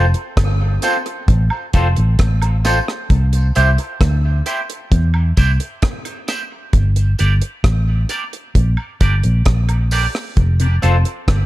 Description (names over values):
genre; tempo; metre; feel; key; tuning
dub reggae; 66 BPM; 4/4; straight; F major; A4 = 440 Hz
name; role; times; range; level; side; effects
clean electric guitar; accompaniment; 0.0-11.0 s; C4 to D5; -22 LUFS; right 1 dB; high-pass filter, dub echo
vintage muted fingered electric bass; bass; 0.0-11.5 s; F1 to E2; -14 LUFS; equal; none
deep reggae drum kit; drums; 0.1-11.5 s; hi-hat, kick drum, rim click; -17 LUFS; equal; none
tambourine and woodblock; percussion; 0.8-11.0 s; none; -30 LUFS; right 2 dB; high-pass filter on perc, dub echo
tonewheel organ; accompaniment; 10.6-10.7 s; F2 to C3; -28 LUFS; left 4 dB; none
room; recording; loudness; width
small room ambience; dark, warm production; -14 LUFS; side -16 dB against mid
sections
0.0-11.5 A section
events
break 0.0-10.4; filter sweep 0.0-10.4; part muted 10.4-11.5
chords
0.0 F; 3.1 C; 6.7 Gm; 10.4 F5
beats
0.38 1.28 2.19 | 3.10 4.01 4.92 5.83 | 6.73 7.64 8.55 9.46 | 10.37 11.28